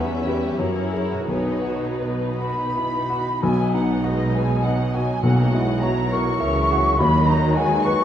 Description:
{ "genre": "classical", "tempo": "76-106 BPM", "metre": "3/4", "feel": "rubato", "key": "B major", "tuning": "A4 = 440 Hz", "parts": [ { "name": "clear baby grand piano", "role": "melody", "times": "0.0-8.0 s", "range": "B1 to E5", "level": "-23 LUFS", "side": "left 1 dB", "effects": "none" }, { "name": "rich chamber violin section", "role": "melody", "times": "0.0-8.0 s", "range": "B4 to E5", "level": "-35 LUFS", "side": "left 1 dB", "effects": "none" }, { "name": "clear studio violin section", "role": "second line", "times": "0.0-8.0 s", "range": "A#3 to C#6", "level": "-30 LUFS", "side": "left 2 dB", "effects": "none" }, { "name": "rich chamber viola section", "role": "accompaniment", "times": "0.0-8.0 s", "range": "E3 to A#4", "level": "-29 LUFS", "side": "right 2 dB", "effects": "none" }, { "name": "warm chamber cello section", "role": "bass", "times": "0.0-8.0 s", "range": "E2 to D#3", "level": "-28 LUFS", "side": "right 2 dB", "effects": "none" }, { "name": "mellow hollow silver concert flute", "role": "second line", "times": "2.4-8.0 s", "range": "D#5 to C#6", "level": "-24 LUFS", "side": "equal", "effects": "none" }, { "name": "mellow French horn section", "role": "sustained chords", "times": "3.4-8.0 s", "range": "F#3 to E4", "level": "-30 LUFS", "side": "equal", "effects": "none" }, { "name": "rich chamber double bass section", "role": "bass", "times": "3.4-8.0 s", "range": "B1 to D#2", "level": "-26 LUFS", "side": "right 2 dB", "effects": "none" }, { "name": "timpani", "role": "percussion", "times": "3.4-6.1 s", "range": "B2", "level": "-25 LUFS", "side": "equal", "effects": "none" } ], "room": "wet scoring stage reverb, RT60 1.9 s", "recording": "minimal, uncompressed stereo recording, vinyl crackle", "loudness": "-18 LUFS", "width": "side -10 dB against mid", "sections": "0.0-3.4 A section; 3.4-8.0 B section", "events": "none", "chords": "0.0 C#m7b5/E; 0.6 F#9; 1.3 B; 5.2 F#7/B; 7.0 B/D#" }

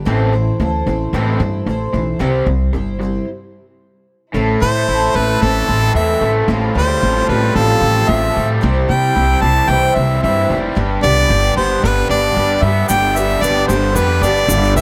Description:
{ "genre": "folk rock and heartland rock", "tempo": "112 BPM", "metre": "4/4", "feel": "straight", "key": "C major", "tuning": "A4 = 439 Hz", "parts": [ { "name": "picked twelve-string acoustic guitar", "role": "accompaniment", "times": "0.0-14.8 s", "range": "A2 to C5", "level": "-25 LUFS", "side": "equal", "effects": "subtle chorus" }, { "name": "raw garage guitar", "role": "riff", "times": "0.0-14.8 s", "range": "G2 to G4", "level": "-23 LUFS", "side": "equal", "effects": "overdrive" }, { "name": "upright bass", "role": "bass", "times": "0.1-14.8 s", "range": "F1 to C3", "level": "-19 LUFS", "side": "equal", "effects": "none" }, { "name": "clear chamber string section", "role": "sustained chords", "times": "4.3-14.8 s", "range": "G3 to A4", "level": "-29 LUFS", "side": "equal", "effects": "none" }, { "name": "clear harmonica", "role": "melody", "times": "4.6-14.8 s", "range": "A4 to A5", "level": "-19 LUFS", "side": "equal", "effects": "none" }, { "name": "egg shaker", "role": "percussion", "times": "12.9-14.8 s", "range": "none", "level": "-27 LUFS", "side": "equal", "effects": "none" } ], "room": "light reverb, small room ambience", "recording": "none", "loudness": "-15 LUFS", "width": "mono", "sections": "0.0-4.3 A section; 4.3-12.9 B section; 12.9-14.8 C section", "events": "stop 3.3-4.3", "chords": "0.1 Am; 2.2 C; 4.3 Am; 6.5 Fadd9/A; 8.6 C; 10.8 G" }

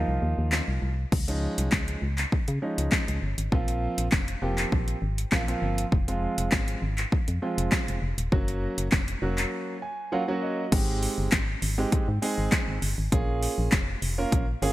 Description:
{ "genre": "dance-pop", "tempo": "100 BPM", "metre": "4/4", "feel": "straight", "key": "Ab major", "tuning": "A4 = 440 Hz", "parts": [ { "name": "warm concert grand piano", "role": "accompaniment", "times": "0.0-14.7 s", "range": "F3 to Ab5", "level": "-30 LUFS", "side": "right 2 dB", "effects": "sidechain pumping" }, { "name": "organ-like FM bass", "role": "bass", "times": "0.0-14.7 s", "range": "Eb1 to Db3", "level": "-29 LUFS", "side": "equal", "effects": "sidechain pumping" }, { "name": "pop drum kit", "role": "drums", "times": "0.5-14.7 s", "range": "crash cymbal, handclaps, hi-hat, kick drum, snare drum", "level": "-26 LUFS", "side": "equal", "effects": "overdrive, gated reverb" } ], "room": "digital ambience", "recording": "bright 1980s-style digital production", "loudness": "-24 LUFS", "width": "side -16 dB against mid", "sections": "0.0-1.1 A section; 1.1-10.7 B section; 10.7-14.7 C section", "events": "break 0.0-1.1, 9.5-10.7; grand piano fill 9.5-10.7", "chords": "0.0 Ebsus2; 1.1 Dbadd9; 3.5 Bbsus2; 5.9 Fm; 8.3 Gb; 10.7 Abmaj7; 13.1 Bbm7" }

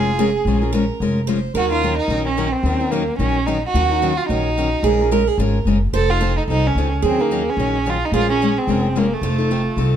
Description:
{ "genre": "acoustic string swing (jazz manouche)", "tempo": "219 BPM", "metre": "4/4", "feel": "swing 56% on 8ths", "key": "Bb minor", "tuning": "A4 = 439 Hz", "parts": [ { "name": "warm violin", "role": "melody", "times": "0.0-10.0 s", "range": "A3 to A4", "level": "-21 LUFS", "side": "right 2 dB", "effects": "plate reverb" }, { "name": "picked steel-string acoustic guitar", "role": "second line", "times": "0.0-10.0 s", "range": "F4 to C5", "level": "-23 LUFS", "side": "right 7 dB", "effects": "none" }, { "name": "picked steel-string acoustic guitar", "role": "accompaniment", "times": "0.0-10.0 s", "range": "Eb3 to Bb4", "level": "-22 LUFS", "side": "left 4 dB", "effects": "none" }, { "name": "upright bass", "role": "bass", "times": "0.0-10.0 s", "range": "F1 to Eb2", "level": "-21 LUFS", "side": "equal", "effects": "none" } ], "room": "moderate studio reverb, RT60 0.7 s", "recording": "dark, warm production", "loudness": "-16 LUFS", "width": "side -9 dB against mid", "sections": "0.0-10.0 A section", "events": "none", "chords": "0.0 Bbm7; 1.6 Ebm7; 4.8 Bbm7; 5.9 F7; 7.0 Ebm7; 8.1 Bbm7; 9.2 F7" }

